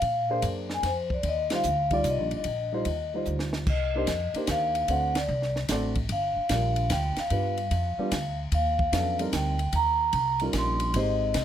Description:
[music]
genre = jazz, small-group swing and bop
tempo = 148 BPM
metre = 3/4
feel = swing 66% on 8ths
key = Eb major, C minor from 3.7 s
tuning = A4 = 438 Hz
[part]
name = vibraphone with soft mallets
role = melody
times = 0.0-11.4 s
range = C5 to C6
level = -27 LUFS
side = equal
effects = none
[part]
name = upright bass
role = bass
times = 0.0-11.4 s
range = G1 to Bb2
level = -30 LUFS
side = equal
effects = none
[part]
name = compact cocktail drum kit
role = drums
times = 0.0-11.4 s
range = crash cymbal, hi-hat, kick drum, ride cymbal, snare drum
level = -33 LUFS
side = equal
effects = none
[part]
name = dark upright piano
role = accompaniment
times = 0.3-11.4 s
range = F#3 to D5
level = -32 LUFS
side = right 2 dB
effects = none
[sound]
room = little or no reverb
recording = close, detailed microphones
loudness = -24 LUFS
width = side -10 dB against mid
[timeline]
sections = 0.0-3.7 A section; 3.7-11.4 B section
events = band accent 1.4, 5.1; drum fill 3.3-3.7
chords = 0.0 Bb9; 1.2 Eb69; 3.7 Cm9; 4.9 D7; 6.1 Gm7; 7.3 G7; 8.5 Cm9; 9.7 Eb9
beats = | 0.02 0.43 0.83 | 1.24 1.64 2.05 | 2.45 2.86 3.27 | 3.67 4.08 4.48 | 4.88 5.29 5.69 | 6.10 6.50 6.91 | 7.31 7.72 8.12 | 8.53 8.93 9.33 | 9.74 10.14 10.55 | 10.95 11.36

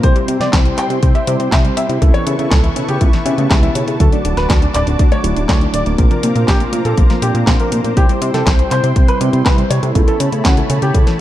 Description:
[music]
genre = italo disco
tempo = 121 BPM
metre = 4/4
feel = straight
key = unclear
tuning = A4 = 440 Hz
[part]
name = warm baby grand piano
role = melody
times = 0.0-11.2 s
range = A3 to G5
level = -20 LUFS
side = left 1 dB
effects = ping-pong delay
[part]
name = warm analog pad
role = sustained chords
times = 0.0-11.2 s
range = E4 to D6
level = -25 LUFS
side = equal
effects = chorus, vintage 12-bit sampler grit
[part]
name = wide unison pluck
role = arpeggios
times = 0.0-11.2 s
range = B2 to D4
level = -25 LUFS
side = left 2 dB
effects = ping-pong delay
[part]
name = tine electric piano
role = stabs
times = 0.0-11.2 s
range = F#3 to A4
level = -23 LUFS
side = right 2 dB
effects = fast stereo tremolo
[part]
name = chorused synth bass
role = bass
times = 0.0-11.0 s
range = D1 to C#3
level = -17 LUFS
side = equal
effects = none
[part]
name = electronic kick drum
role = drums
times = 0.0-11.0 s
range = none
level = -13 LUFS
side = equal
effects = none
[part]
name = house drum kit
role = drums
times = 0.0-11.2 s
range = handclaps, hi-hat, snare drum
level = -21 LUFS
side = equal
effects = none
[sound]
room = little or no reverb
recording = dark, warm production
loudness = -12 LUFS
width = side -13 dB against mid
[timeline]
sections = 0.0-11.2 A section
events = none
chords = 0.0 C; 2.0 Aadd9/C#; 4.0 D; 6.0 Bbadd9; 8.0 C; 10.0 Aadd9/C#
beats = | 0.04 0.53 1.03 1.52 | 2.02 2.51 3.01 3.51 | 4.00 4.50 4.99 5.49 | 5.99 6.48 6.98 7.47 | 7.97 8.46 8.96 9.46 | 9.95 10.45 10.94

